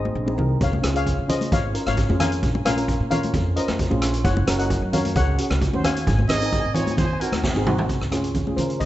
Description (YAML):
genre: calypso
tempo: 132 BPM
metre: 4/4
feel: straight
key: Db major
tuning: A4 = 439 Hz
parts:
  - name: steel pan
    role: melody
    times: 0.0-8.9 s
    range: C5 to Ab5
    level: -29 LUFS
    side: left 5 dB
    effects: slapback echo
  - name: steel pan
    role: accompaniment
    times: 0.0-8.9 s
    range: C4 to Db5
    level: -26 LUFS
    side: right 1 dB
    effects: none
  - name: upright bass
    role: bass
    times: 0.0-8.9 s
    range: Gb1 to Db3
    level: -24 LUFS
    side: equal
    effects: none
  - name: congas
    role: percussion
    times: 0.1-8.9 s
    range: none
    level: -28 LUFS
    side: left 1 dB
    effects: none
  - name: street-band drum kit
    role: drums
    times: 0.6-8.9 s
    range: hi-hat, kick drum, rim click, snare drum, toms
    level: -25 LUFS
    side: equal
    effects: none
  - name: dark trumpet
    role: second line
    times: 6.3-7.9 s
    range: Ab4 to Eb5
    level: -27 LUFS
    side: right 3 dB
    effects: none
room: light reverb, studio reverb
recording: rough home demo mix, nothing above 8.0 kHz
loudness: -19 LUFS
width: side -14 dB against mid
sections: 0.0-7.9 A section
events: drum fill 7.4-7.9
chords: 0.0 Ab; 0.6 Db; 2.4 Bbm7; 4.2 Gb; 6.1 Ab7; 7.9 Db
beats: 0.15 | 0.61 1.06 1.52 1.97 | 2.43 2.88 3.34 3.79 | 4.25 4.70 5.16 5.61 | 6.07 6.52 6.98 7.43 | 7.89 8.35 8.80